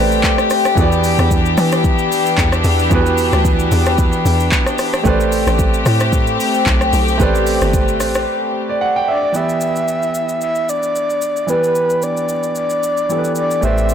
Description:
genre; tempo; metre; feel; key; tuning
amapiano; 112 BPM; 4/4; swing 55% on 16ths; E minor; A4 = 439 Hz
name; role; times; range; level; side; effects
clear concert grand piano; accompaniment; 0.0-13.9 s; E3 to G5; -20 LUFS; right 4 dB; none
warm studio string section; sustained chords; 0.0-9.3 s; E3 to G4; -18 LUFS; left 4 dB; sidechain pumping
hollow log drum bass; bass; 0.0-8.3 s; G1 to E3; -17 LUFS; equal; none
deep house drum kit; drums; 0.1-13.9 s; handclaps, hi-hat, kick drum, rim click, shaker; -19 LUFS; equal; none
breathy flute-like synth lead; melody; 9.1-13.9 s; B4 to E5; -17 LUFS; left 1 dB; chorus, ping-pong delay
warm sub bass; bass; 13.6-13.9 s; A1; -16 LUFS; left 1 dB; none
swell; sound effects; 13.8-13.9 s; none; -29 LUFS; left 1 dB; none
room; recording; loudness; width
light reverb; blown-out, overdriven recording, overdrive; -13 LUFS; side -8 dB against mid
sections
0.0-9.3 A section; 9.3-13.9 B section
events
drop 0.0-9.3; break 8.3-9.3; swell 13.8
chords
0.0 Am11; 0.8 Em7; 5.1 Am11; 9.3 Em7

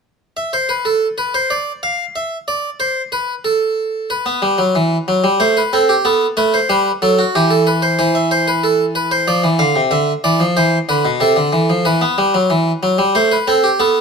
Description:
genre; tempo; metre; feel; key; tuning
classical, baroque-style two-part invention for harpsichord; 93 BPM; 3/4; straight; A minor; A4 = 439 Hz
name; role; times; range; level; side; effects
harpsichord; solo; 0.4-14.0 s; B2 to F5; -13 LUFS; right 1 dB; none
room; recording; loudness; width
light reverb; close, detailed microphones; -13 LUFS; side -5 dB against mid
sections
0.2-14.0 A section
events
none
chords
0.2 N.C.; 4.1 Em; 5.4 Am9; 6.1 B5; 7.3 Em; 8.0 Am/E; 9.3 Dm9; 9.9 E5/D; 11.2 Am/C; 11.9 Em; 13.1 Am9

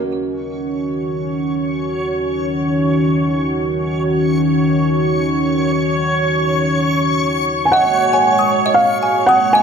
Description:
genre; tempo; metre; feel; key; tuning
folktronica; free time; none; none; Eb minor; A4 = 443 Hz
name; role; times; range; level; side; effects
warm analog pad; sustained chords; 0.0-9.6 s; Eb3 to Gb4; -18 LUFS; equal; chorus, vintage 12-bit sampler grit
backwards swelling texture; texture; 0.7-9.6 s; Db5 to Db6; -21 LUFS; equal; built-in reverb
felt-muted upright piano; melody; 7.7-9.6 s; F5 to Ab5; -13 LUFS; right 1 dB; vintage 12-bit sampler grit, ping-pong delay
kalimba; second line; 7.7-9.6 s; Eb5 to Eb6; -21 LUFS; equal; ping-pong delay
room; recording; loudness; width
moderate echo chamber reverb, RT60 2.3 s; none; -14 LUFS; side -6 dB against mid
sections
0.0-9.6 A section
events
none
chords
0.0 Ebm7; 7.7 Gbadd9

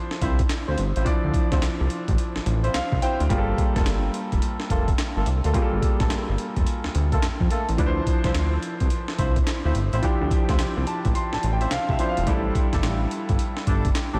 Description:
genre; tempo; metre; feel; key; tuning
R&B, new jack swing; 107 BPM; 4/4; swing 64% on 16ths; D minor; A4 = 440 Hz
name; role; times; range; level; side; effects
clear grand piano; accompaniment; 0.0-14.2 s; F3 to C6; -30 LUFS; equal; none
breakbeat sampler-style drum kit; drums; 0.1-14.1 s; handclaps, hi-hat, kick drum, snare drum; -27 LUFS; equal; none
mellow horn section; stabs; 0.2-14.2 s; A3 to C5; -34 LUFS; equal; tape echo
fat analog bass; bass; 0.2-14.2 s; E1 to F2; -26 LUFS; equal; none
room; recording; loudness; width
moderate cathedral reverb, RT60 5.7 s; dreamy mix soaked in reverb; -23 LUFS; mono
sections
0.0-14.2 A section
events
grand piano fill 2.5-3.3, 10.6-12.3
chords
0.0 Dm9; 3.3 Gm9; 7.8 Dm9; 12.3 A7sus4

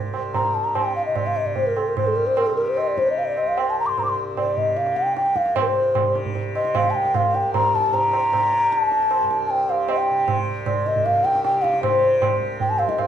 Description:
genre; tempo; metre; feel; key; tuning
indian classical, Hindustani; 152 BPM; 4/4; straight; C raga bhimpalasi; A4 = 440 Hz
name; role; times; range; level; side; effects
tanpura; drone; 0.0-13.1 s; C2 to C3; -30 LUFS; left 2 dB; none
tabla; percussion; 0.1-13.1 s; none; -26 LUFS; right 6 dB; none
mellow hollow bansuri; melody; 0.3-13.1 s; A4-24c to D6; -19 LUFS; left 1 dB; none
room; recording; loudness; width
moderate recital hall reverb, RT60 1.3 s; minimal, uncompressed stereo recording; -18 LUFS; side -9 dB against mid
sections
0.0-5.6 A section; 5.6-13.1 B section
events
speeding up 0.0-13.1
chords
none

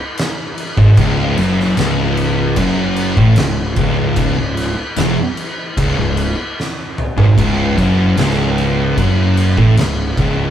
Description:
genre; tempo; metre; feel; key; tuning
stoner and doom metal; 75 BPM; 4/4; straight; C# minor; A4 = 439 Hz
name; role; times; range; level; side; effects
oversized low-tuned drum kit; drums; 0.2-10.4 s; crash cymbal, kick drum, snare drum, toms; -20 LUFS; equal; none
thick fuzz guitar; riff; 0.8-10.5 s; C#2 to A2; -17 LUFS; left 4 dB; distortion
thick fuzz guitar; riff; 0.8-10.5 s; C#2 to A2; -16 LUFS; right 4 dB; distortion
fuzz picked electric bass; bass; 0.8-10.5 s; C#1 to A1; -20 LUFS; equal; overdrive, tube saturation
room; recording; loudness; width
moderate studio ambience, RT60 0.5 s; band playing live in one room; -12 LUFS; side -10 dB against mid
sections
0.0-10.5 A section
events
drum fill 6.6-7.4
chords
none

